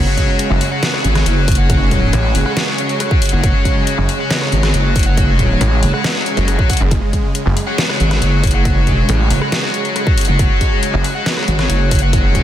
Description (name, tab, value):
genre	heavy wobble dubstep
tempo	138 BPM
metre	4/4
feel	half-time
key	unclear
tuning	A4 = 439 Hz
part	supersaw pad	sustained chords	0.0-12.4 s	C#3 to C#4	-22 LUFS	right 1 dB	sidechain pumping
part	tight distorted guitar	stabs	0.0-12.4 s	F#4 to F#5	-20 LUFS	left 2 dB	distortion, digital delay
part	wobble bass	bass	0.0-12.4 s	F#1 to G#1	-15 LUFS	equal	chorus, overdrive
part	dubstep drum kit	drums	0.2-12.4 s	hi-hat, rim click, snare drum	-20 LUFS	left 1 dB	none
part	electronic kick drum	drums	0.2-12.4 s	none	-15 LUFS	equal	none
part	snarling distorted saw bass	bass	0.5-11.0 s	F#1 to A1	-16 LUFS	equal	distortion, overdrive
room	little or no reverb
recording	dense, heavily limited modern master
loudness	-12 LUFS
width	side -11 dB against mid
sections	0.0-12.4 A section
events	none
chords	0.0 F#5